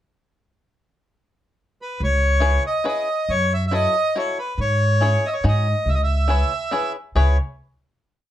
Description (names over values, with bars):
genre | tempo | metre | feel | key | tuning
musette waltz | 140 BPM | 3/4 | straight | C# minor | A4 = 442 Hz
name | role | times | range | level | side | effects
accordion | melody | 1.8-7.4 s | B4 to E5 | -22 LUFS | right 1 dB | none
upright bass | bass | 2.0-7.4 s | C#2 to G#2 | -19 LUFS | equal | none
bluegrass banjo | accompaniment | 2.4-7.4 s | C#4 to C#5 | -26 LUFS | left 3 dB | none
room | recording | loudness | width
light reverb | dark, warm production | -18 LUFS | side -12 dB against mid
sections
0.7-2.0 pickup bar; 2.0-7.2 A section; 7.2-8.3 final chord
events
none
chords
0.7 N.C.; 2.0 C#m7; 3.3 F#m7; 4.6 C#m/G#; 5.4 G#7sus4; 5.9 C#m7